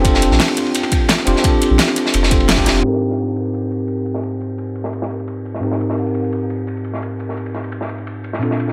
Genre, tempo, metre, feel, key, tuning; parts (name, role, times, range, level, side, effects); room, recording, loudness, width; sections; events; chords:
liquid drum and bass; 172 BPM; 4/4; straight; Ab major; A4 = 440 Hz
bell-like tine electric piano; accompaniment; 0.0-8.7 s; Ab2 to Bb4; -21 LUFS; equal; subtle chorus, diffuse ambient delay
warm sub bass; bass; 0.0-2.8 s; F1 to Bb1; -20 LUFS; equal
electronic kick drum; drums; 0.0-2.6 s; -20 LUFS; equal; studio reverb
pop drum kit; drums; 0.0-8.7 s; hi-hat, snare drum; -23 LUFS; equal; studio reverb
crunchy breakbeat drum kit; drums; 0.1-8.7 s; hi-hat, ride cymbal, snare drum; -26 LUFS; equal; high-pass filter on cymbals, low-pass filter on cymbals, studio reverb, high-pass filter on hats, low-pass filter on hats, high-pass filter on snare, low-pass filter on snare, high-pass filter on room, low-pass filter on room
moderate lush hall reverb, RT60 2.1 s; low-pass filter; -18 LUFS; mono
0.0-2.8 A section; 2.8-8.7 B section
band accent 2.5
0.0 Bbmaj9 (rootless); 2.8 Abmaj9